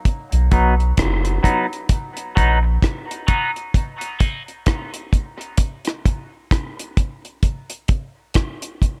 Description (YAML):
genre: dub reggae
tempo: 65 BPM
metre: 4/4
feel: swing 59% on 16ths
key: Eb minor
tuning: A4 = 440 Hz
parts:
  - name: deep reggae drum kit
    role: drums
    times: 0.1-9.0 s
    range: hi-hat, kick drum, rim click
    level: -21 LUFS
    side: equal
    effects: none
  - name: soft dub sub bass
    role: bass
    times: 0.3-2.8 s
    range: F#1 to B1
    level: -19 LUFS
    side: equal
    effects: none
  - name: clean electric guitar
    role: accompaniment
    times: 0.5-4.4 s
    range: F#3 to D#4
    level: -25 LUFS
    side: equal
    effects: subtle chorus, high-pass filter, low-pass filter, dub echo
room: light reverb, studio ambience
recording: none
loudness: -20 LUFS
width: mono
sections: 0.0-9.0 A section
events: filter sweep on clean electric guitar 0.0-9.0; break 3.7-9.0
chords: 0.1 B; 3.7 Ebm; 7.4 N.C.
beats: | 0.06 0.98 1.90 2.82 | 3.75 4.67 5.59 6.51 | 7.43 8.36